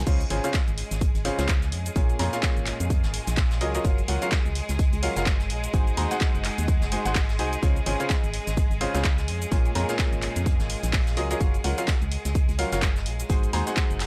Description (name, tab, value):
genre	piano house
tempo	127 BPM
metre	4/4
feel	swing 58% on 16ths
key	Db major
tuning	A4 = 441 Hz
part	clear studio violin section	sustained chords	0.0-14.1 s	Ab3 to Ab4	-38 LUFS	equal	sidechain pumping
part	organ-like FM bass	bass	0.0-14.1 s	Gb1 to F2	-31 LUFS	equal	sidechain pumping
part	bright grand piano	riff	0.1-14.1 s	Bb2 to Bb5	-32 LUFS	equal	sidechain pumping, tape echo
part	electronic kick drum	drums	0.1-13.9 s	none	-26 LUFS	equal	none
part	house drum kit	drums	0.1-14.1 s	crash cymbal, handclaps, hi-hat, shaker	-34 LUFS	equal	none
part	vintage brush drum kit	drums	0.1-14.1 s	hi-hat, snare drum	-44 LUFS	equal	none
room	studio reverb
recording	dry, gritty hardware recording, cassette tape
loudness	-25 LUFS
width	mono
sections	0.0-14.1 A section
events	none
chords	0.1 Dbmaj7; 2.0 Bbm7; 3.8 Gbmaj7; 5.7 Ab7; 7.6 Dbmaj7; 9.5 Bbm7; 11.4 Gbmaj7; 13.3 Ab7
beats	| 0.07 0.54 1.01 1.49 | 1.96 2.43 2.90 3.38 | 3.85 4.32 4.79 5.26 | 5.74 6.21 6.68 7.16 | 7.63 8.10 8.57 9.04 | 9.52 9.99 10.46 10.93 | 11.41 11.88 12.35 12.82 | 13.30 13.77